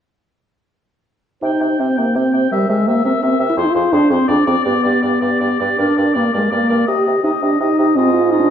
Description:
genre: quick classical-period movement for wind quintet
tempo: 158-171 BPM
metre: 3/4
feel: rubato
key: unclear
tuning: A4 = 440 Hz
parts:
  - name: warm oboe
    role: second line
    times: 1.4-8.5 s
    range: C5 to G5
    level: -20 LUFS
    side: left 5 dB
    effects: none
  - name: dark French horn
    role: accompaniment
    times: 1.4-8.5 s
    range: G3 to G4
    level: -16 LUFS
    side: equal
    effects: none
  - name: mellow clarinet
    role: accompaniment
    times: 1.4-8.5 s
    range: F4 to C5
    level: -22 LUFS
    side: right 8 dB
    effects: none
  - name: warm bassoon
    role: bass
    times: 1.4-8.5 s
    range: F2 to C3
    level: -23 LUFS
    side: right 2 dB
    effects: none
room: wet recital hall reverb, RT60 1.5 s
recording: dark, warm production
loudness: -13 LUFS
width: side -8 dB against mid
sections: 1.4-8.5 A section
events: none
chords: 1.4 Cm; 2.5 C7; 3.6 Fm; 4.3 Ddim/F; 4.7 G; 5.8 Gm; 6.9 Cm; 8.0 Fm7/Ab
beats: | 1.43 1.79 2.15 | 2.51 2.87 3.22 | 3.57 3.92 4.29 | 4.65 5.03 5.41 | 5.78 6.15 6.51 | 6.88 7.24 7.60 | 7.96 8.31

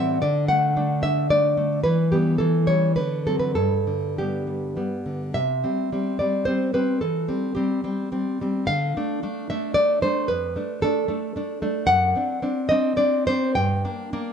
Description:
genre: romantic piece for solo classical guitar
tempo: 97-115 BPM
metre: 3/4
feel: rubato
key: G major, C major from 5.3 s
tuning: A4 = 440 Hz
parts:
  - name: nylon-string guitar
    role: solo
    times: 0.0-14.3 s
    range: F2 to G5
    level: -20 LUFS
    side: equal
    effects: none
room: moderate spring reverb, RT60 1.7 s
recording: none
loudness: -20 LUFS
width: side -7 dB against mid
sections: 0.0-5.3 A section; 5.3-14.3 B section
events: none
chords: 0.2 D; 1.9 Em; 2.4 A7/E; 3.0 D7; 3.6 G; 5.3 C; 7.0 C/E; 8.7 Dm; 10.3 Dm/F; 11.9 D7/F#; 13.6 Gm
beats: | 0.23 0.76 1.31 | 1.85 2.40 2.97 | 3.57 4.17 4.76 | 5.34 5.90 6.46 | 7.01 7.55 8.11 | 8.66 9.21 9.74 | 10.29 10.83 11.36 | 11.88 12.41 12.96 | 13.56 14.11

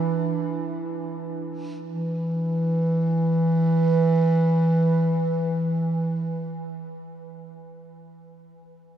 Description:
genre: world meditative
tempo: free time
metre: none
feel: none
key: unclear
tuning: A4 = 440 Hz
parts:
  - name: mellow bass clarinet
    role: solo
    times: 0.0-6.6 s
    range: E3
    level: -22 LUFS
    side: right 1 dB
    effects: tape echo
room: wet huge ambient reverb, RT60 8.1 s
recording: dreamy mix soaked in reverb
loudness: -21 LUFS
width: side -10 dB against mid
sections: 0.0-1.9 A section; 1.9-6.0 B section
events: none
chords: none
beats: free time

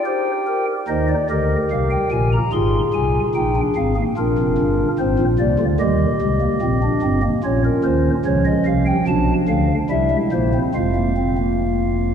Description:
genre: classical, baroque-style 4-part fugue for pipe organ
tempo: 73 BPM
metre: 4/4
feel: straight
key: Eb major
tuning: A4 = 439 Hz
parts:
  - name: pipe organ, stopped flute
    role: solo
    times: 0.0-12.1 s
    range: F1 to C6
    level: -16 LUFS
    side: equal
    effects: none
room: wet cathedral reverb, RT60 5.5 s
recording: in a vast, echoing space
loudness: -16 LUFS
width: side -8 dB against mid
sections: 0.9-12.1 A section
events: none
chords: 0.0 Eb (rootless); 0.9 Cm; 2.5 Fm/Ab; 4.2 Bb; 5.8 Eb; 7.4 Gm7b5/Bb (rootless); 9.1 Bm7b5; 9.9 C7; 10.7 Fm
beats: 0.06 | 0.89 1.71 2.54 3.36 | 4.18 5.00 5.81 6.63 | 7.45 8.26 9.08 9.91 | 10.74 11.58

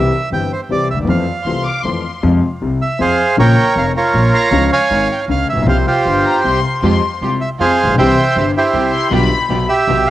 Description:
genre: tango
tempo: 157 BPM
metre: 3/4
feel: rubato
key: F harmonic minor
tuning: A4 = 440 Hz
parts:
  - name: bandoneon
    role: melody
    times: 0.0-10.1 s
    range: E4 to Bb5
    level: -15 LUFS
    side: right 3 dB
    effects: tape echo
  - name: warm concert grand piano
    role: accompaniment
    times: 0.0-10.0 s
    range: F1 to G4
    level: -17 LUFS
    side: left 3 dB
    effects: cassette tape
  - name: upright bass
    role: bass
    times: 0.0-10.0 s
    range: F1 to F2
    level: -19 LUFS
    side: right 1 dB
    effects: none
  - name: warm studio violin section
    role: second line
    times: 1.4-2.2, 6.2-9.6 s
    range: Bb5 to D6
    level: -21 LUFS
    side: left 5 dB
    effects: cassette tape
  - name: rich symphonic string section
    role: stabs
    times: 6.8-10.0 s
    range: Ab3 to G4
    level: -24 LUFS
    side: right 6 dB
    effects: cassette tape
room: light reverb, small room ambience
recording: home recording on cassette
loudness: -12 LUFS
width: side -14 dB against mid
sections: 0.0-2.2 A section; 2.2-10.1 B section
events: none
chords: 0.0 C; 1.1 Fmaj7; 2.2 Fm; 3.4 Bbm; 4.5 Db; 5.7 Csus4; 6.4 C5; 6.8 Fmadd9; 8.0 C; 9.1 G7/B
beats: 0.31 0.69 | 1.07 1.46 1.84 | 2.23 2.62 3.00 | 3.38 3.77 4.14 | 4.52 4.91 5.29 | 5.67 6.05 6.43 | 6.82 7.21 7.59 | 7.97 8.36 8.74 | 9.12 9.50 9.88

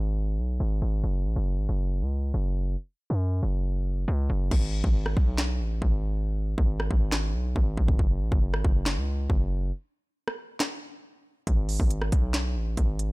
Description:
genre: hip hop, trap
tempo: 138 BPM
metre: 4/4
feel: half-time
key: G# phrygian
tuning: A4 = 439 Hz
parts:
  - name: distorted 808-style bass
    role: bass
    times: 0.0-13.1 s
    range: F#1 to F#2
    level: -26 LUFS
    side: equal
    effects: distortion
  - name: trap drum kit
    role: drums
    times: 4.5-13.1 s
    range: crash cymbal, handclaps, hi-hat, kick drum, rim click, snare drum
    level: -25 LUFS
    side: equal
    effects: none
room: digital ambience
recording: low-pass filter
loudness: -24 LUFS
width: side -24 dB against mid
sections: 0.0-4.5 A section; 4.5-13.1 B section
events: filter sweep 0.0-4.5; hi-hats muted 4.5-11.5; break 9.7-11.5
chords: none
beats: 0.17 0.60 | 1.03 1.47 1.91 2.34 | 2.77 3.21 3.64 4.08 | 4.51 4.95 5.38 5.82 | 6.25 6.69 7.12 7.56 | 7.99 8.43 8.86 9.30 | 9.73 10.17 10.60 11.04 | 11.47 11.90 12.34 12.78

